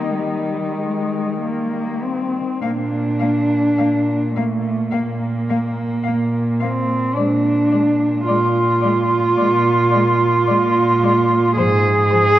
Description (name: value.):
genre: classical, lyrical piece for cello ensemble.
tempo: 47-56 BPM.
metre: 4/4.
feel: rubato.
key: Bb major.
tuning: A4 = 440 Hz.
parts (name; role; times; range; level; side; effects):
muted cello; melody; 0.0-12.2 s; Eb4 to F5; -28 LUFS; left 5 dB; none.
muted cello; second line; 0.0-12.4 s; G3 to Ab4; -17 LUFS; right 2 dB; none.
muted cello; accompaniment; 0.0-12.2 s; F3 to C4; -26 LUFS; left 3 dB; none.
muted cello; bass; 0.0-12.4 s; Ab2 to Eb3; -21 LUFS; right 1 dB; none.
room: wet concert hall reverb, RT60 2.2 s.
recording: worn, warbling old tape, cassette tape, warbly pitch drift.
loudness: -16 LUFS.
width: side -13 dB against mid.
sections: 0.0-2.6 A section; 2.6-12.4 B section.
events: none.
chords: 0.0 Eb; 2.6 Bb; 7.2 Bb7; 11.6 N.C..